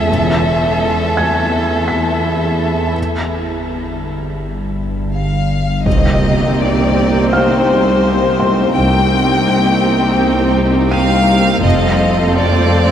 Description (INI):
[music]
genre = cinematic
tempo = 83 BPM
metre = 4/4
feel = straight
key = C dorian from 5.9 s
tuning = A4 = 440 Hz
[part]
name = rich chamber violin section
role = second line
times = 0.0-12.9 s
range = Eb4 to E5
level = -20 LUFS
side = equal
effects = none
[part]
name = rich studio cello section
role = bass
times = 0.0-12.9 s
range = C2 to F2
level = -19 LUFS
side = equal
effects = none
[part]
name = organ-like drone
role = drone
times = 0.0-12.9 s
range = G1 to F2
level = -19 LUFS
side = equal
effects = ensemble chorus, built-in reverb
[part]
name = felt-muted upright piano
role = texture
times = 0.0-12.9 s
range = F5 to Eb7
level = -24 LUFS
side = equal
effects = none
[part]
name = rich chamber double bass section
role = bass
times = 0.1-0.8, 5.9-12.3 s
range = E1 to C2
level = -19 LUFS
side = equal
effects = none
[part]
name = clear chamber violin section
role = melody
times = 5.1-12.9 s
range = C5 to G5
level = -17 LUFS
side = left 2 dB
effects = none
[part]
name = rich chamber viola section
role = accompaniment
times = 5.9-12.9 s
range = A3 to C4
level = -18 LUFS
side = right 2 dB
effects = none
[part]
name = impact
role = sound effects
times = 5.9-8.8 s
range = none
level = -23 LUFS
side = equal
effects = none
[sound]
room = wet huge ambient reverb, RT60 7.9 s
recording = in a vast, echoing space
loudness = -12 LUFS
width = side -9 dB against mid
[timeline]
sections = 0.0-5.9 A section; 5.9-12.9 B section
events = break 3.0-5.9; impact 5.9-8.8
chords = 0.1 Esus4; 3.0 N.C.; 5.9 Cm7; 11.6 F